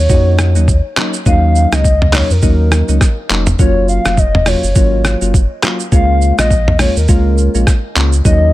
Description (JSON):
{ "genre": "afrobeats", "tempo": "103 BPM", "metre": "4/4", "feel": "swing 58% on 16ths", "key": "Db major", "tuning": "A4 = 440 Hz", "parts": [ { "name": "hollow clarinet-like synth lead", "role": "melody", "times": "0.0-8.5 s", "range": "Bb4 to F5", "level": "-18 LUFS", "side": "left 1 dB", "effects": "chorus, ping-pong delay" }, { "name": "warm sub bass", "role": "bass", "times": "0.0-8.5 s", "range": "F1 to F2", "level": "-13 LUFS", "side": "equal", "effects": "none" }, { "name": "soft electric-piano-like synth keys", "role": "accompaniment", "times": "0.1-8.5 s", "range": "Gb3 to Gb4", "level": "-18 LUFS", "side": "equal", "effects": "chorus" }, { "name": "lo-fi sampler-style drum kit", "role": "drums", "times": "0.1-8.4 s", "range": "handclaps, hi-hat, kick drum, rim click, shaker, toms", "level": "-13 LUFS", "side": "equal", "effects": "overdrive" } ], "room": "digital ambience", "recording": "none", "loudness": "-10 LUFS", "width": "side -16 dB against mid", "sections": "0.0-8.5 A section", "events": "none", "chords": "0.0 Ebm7; 3.6 Gbmaj7; 5.9 Db6" }